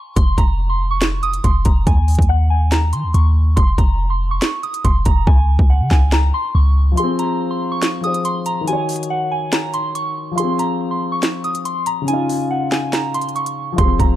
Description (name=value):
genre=hip hop, trap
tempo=141 BPM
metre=4/4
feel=half-time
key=F phrygian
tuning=A4 = 440 Hz
part: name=soft synth bell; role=melody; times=0.0-14.2 s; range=Gb5 to Eb6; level=-22 LUFS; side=right 2 dB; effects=chorus, phaser
part: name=clean 808-style bass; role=bass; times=0.2-7.0, 13.8-14.2 s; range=F1 to Eb3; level=-15 LUFS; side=equal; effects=none
part: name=trap drum kit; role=drums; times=0.2-14.1 s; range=handclaps, hi-hat, kick drum, snare drum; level=-17 LUFS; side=equal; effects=none
part: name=dark baby grand piano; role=accompaniment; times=6.9-14.2 s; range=Db3 to Db5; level=-22 LUFS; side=left 3 dB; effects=none
room=little or no reverb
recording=dark, warm production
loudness=-15 LUFS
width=side -14 dB against mid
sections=0.0-14.2 A section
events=break 0.0, 7.0-13.8; hi-hats muted 5.3-7.0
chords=0.2 Fsus4; 1.9 Ebsus4; 3.6 Fsus4; 5.3 Db5; 7.0 Fm; 8.7 Ebm7; 10.4 Fm; 12.1 Dbadd9